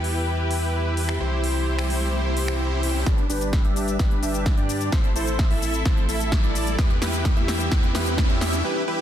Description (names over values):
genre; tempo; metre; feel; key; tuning
EDM, festival progressive house; 129 BPM; 4/4; straight; G major; A4 = 441 Hz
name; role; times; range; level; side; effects
dark studio string section; sustained chords; 0.0-8.6 s; C3 to B4; -33 LUFS; left 2 dB; sidechain pumping, low-pass filter
dense compressed supersaw; riff; 0.0-9.0 s; D4 to E5; -26 LUFS; equal; sidechain pumping, low-pass filter, digital delay
saturated sub bass; bass; 0.0-8.6 s; G1 to G2; -27 LUFS; equal; sidechain pumping
big-room dance drum kit; drums; 0.0-8.6 s; cabasa, finger snaps, hi-hat, snare drum; -30 LUFS; equal; soft clipping on snare
riser; sound effects; 1.0-8.6 s; none; -34 LUFS; right 1 dB; none
electronic kick drum; drums; 3.1-8.3 s; none; -21 LUFS; equal; none
room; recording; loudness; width
light reverb; dense, heavily limited modern master; -20 LUFS; side -10 dB against mid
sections
0.0-3.1 A section; 3.1-9.0 B section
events
riser 1.0-3.1, 3.1-8.6; build-up 3.1-9.0; drum fill 3.1-8.6; filter sweep on supersaw synth 3.1-9.0; filter sweep on string section 3.1-9.0; break 8.6-9.0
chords
0.0 Em; 1.2 C; 3.1 G; 4.9 Am; 6.8 Em